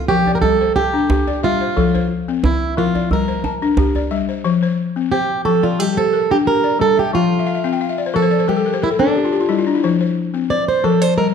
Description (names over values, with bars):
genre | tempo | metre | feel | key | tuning
west african traditional, West African string and xylophone music | 89 BPM | 4/4 | straight | F major | A4 = 441 Hz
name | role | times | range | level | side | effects
fingerpicked plugged-in swing-style acoustic guitar | melody | 0.0-11.3 s | D4 to D5 | -18 LUFS | right 5 dB | none
balafon | arpeggios | 0.0-11.3 s | F3 to A5 | -18 LUFS | left 6 dB | none
djembe | percussion | 0.3-4.1 s | none | -21 LUFS | right 3 dB | none
room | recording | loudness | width
wet recital hall reverb, RT60 1.4 s | dark, warm production | -15 LUFS | side -7 dB against mid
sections
0.0-4.5 A section; 4.5-11.3 B section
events
steel-string acoustic guitar solo 4.5-11.3; balafon fill 7.4-9.8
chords
0.4 Gm; 1.8 F; 3.1 Gm; 4.5 F5; 5.8 Gm; 7.1 F5; 8.5 G5; 9.8 F5